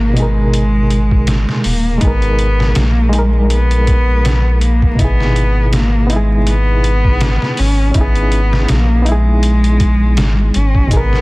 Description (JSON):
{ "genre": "trip hop", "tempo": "81 BPM", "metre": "4/4", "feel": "swing 56% on 16ths", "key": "unclear", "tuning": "A4 = 441 Hz", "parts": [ { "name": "dark cello", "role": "melody", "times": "0.0-11.2 s", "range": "G#3 to C#4", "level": "-18 LUFS", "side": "equal", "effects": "dub echo" }, { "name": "reed electric piano", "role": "accompaniment", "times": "0.0-11.2 s", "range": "B2 to A#4", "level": "-20 LUFS", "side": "equal", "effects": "tremolo, low-pass filter" }, { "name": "round analog bass", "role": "bass", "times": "0.0-11.2 s", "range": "D#1 to A#1", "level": "-13 LUFS", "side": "equal", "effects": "none" }, { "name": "trip hop sampler-style drum kit", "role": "drums", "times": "0.2-11.2 s", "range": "hi-hat, kick drum, snare drum", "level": "-17 LUFS", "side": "equal", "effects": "small room ambience" }, { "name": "maracas", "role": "percussion", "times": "10.9-11.1 s", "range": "none", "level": "-34 LUFS", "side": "left 2 dB", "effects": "none" } ], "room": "digital ambience", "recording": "dense, heavily limited modern master, vinyl crackle", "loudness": "-11 LUFS", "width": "side -22 dB against mid", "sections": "0.0-11.2 A section", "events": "filter sweep on reed electric piano 0.0-11.2", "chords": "0.0 G#madd9; 5.0 C#m7/G#" }